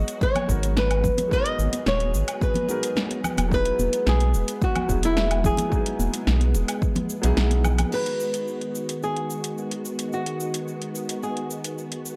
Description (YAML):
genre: sunset chillout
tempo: 109 BPM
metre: 4/4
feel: straight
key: G# minor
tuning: A4 = 440 Hz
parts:
  - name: flamenco guitar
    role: melody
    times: 0.0-12.0 s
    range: E4 to D#5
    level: -29 LUFS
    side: equal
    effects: tape echo
  - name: warm concert grand piano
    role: accompaniment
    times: 0.0-12.2 s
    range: F#3 to B4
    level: -36 LUFS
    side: equal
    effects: analog delay
  - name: soft string machine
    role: sustained chords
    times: 0.0-12.2 s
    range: D#3 to G#4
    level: -35 LUFS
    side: equal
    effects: ensemble chorus
  - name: round analog bass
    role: bass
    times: 0.0-7.8 s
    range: D#1 to B1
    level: -25 LUFS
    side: equal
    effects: transformer saturation
  - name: deep house drum kit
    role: drums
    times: 0.1-12.2 s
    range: cabasa, crash cymbal, hi-hat, snare drum, woodblock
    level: -32 LUFS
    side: equal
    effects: overdrive
  - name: electronic kick drum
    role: drums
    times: 0.2-6.9 s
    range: none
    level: -28 LUFS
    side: equal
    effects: overdrive
  - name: congas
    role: percussion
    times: 0.2-7.9 s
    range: none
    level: -34 LUFS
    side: equal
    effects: none
room: digital ambience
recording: dry, gritty hardware recording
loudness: -24 LUFS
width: mono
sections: 0.0-7.9 A section; 7.9-12.2 B section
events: none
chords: 0.0 G#m7; 3.5 Emaj7; 7.9 G#m7